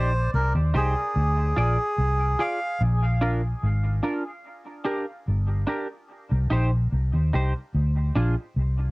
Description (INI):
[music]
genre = dub reggae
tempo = 73 BPM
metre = 4/4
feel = straight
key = C minor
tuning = A4 = 439 Hz
[part]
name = melodica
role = melody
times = 0.0-2.8 s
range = Ab4 to F5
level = -28 LUFS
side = right 1 dB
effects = cassette tape, dub echo
[part]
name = semi-hollow electric guitar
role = accompaniment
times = 0.0-8.3 s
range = D4 to D5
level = -30 LUFS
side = right 1 dB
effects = analog chorus, cassette tape, dub echo
[part]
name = vintage muted fingered electric bass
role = bass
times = 0.0-8.9 s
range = G1 to Eb2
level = -22 LUFS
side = equal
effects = none
[sound]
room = light reverb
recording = home recording on cassette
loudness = -22 LUFS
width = side -25 dB against mid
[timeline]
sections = 0.0-8.9 A section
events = none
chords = 0.0 Cm; 1.2 Ddim; 2.8 Bb; 4.4 Gm; 6.1 Cm; 7.7 Ddim